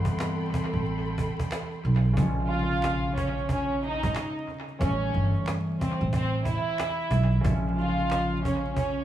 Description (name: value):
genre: hip hop, boom-bap hip-hop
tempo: 91 BPM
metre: 4/4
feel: swing 62% on 16ths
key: unclear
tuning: A4 = 440 Hz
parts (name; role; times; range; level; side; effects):
- concert harp; accompaniment; 0.0-9.0 s; Db3 to Db4; -31 LUFS; left 1 dB; cassette tape, high-pass filter, low-pass filter, analog delay
- rich studio string section; sustained chords; 0.0-2.1 s; A4 to C6; -36 LUFS; right 1 dB; high-pass filter, low-pass filter
- upright bass; bass; 0.0-9.0 s; G1 to B1; -27 LUFS; right 1 dB; none
- cajon; drums; 0.1-9.0 s; none; -34 LUFS; right 1 dB; analog delay
- finger snap; percussion; 0.2-8.3 s; none; -50 LUFS; right 5 dB; none
- warm studio violin section; melody; 2.5-9.0 s; C4 to F5; -29 LUFS; right 2 dB; high-pass filter, low-pass filter, analog delay
room: light reverb, studio reverb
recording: echo-heavy mix, vinyl crackle, small room ambience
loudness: -24 LUFS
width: side -12 dB against mid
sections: 0.0-2.2 A section; 2.2-9.0 B section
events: none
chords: 0.0 Am9; 2.2 Bbm7; 4.8 Am7; 7.4 Bbm7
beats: 0.19 0.85 1.51 | 2.17 2.83 3.49 4.15 | 4.81 5.47 6.12 6.79 | 7.44 8.10 8.76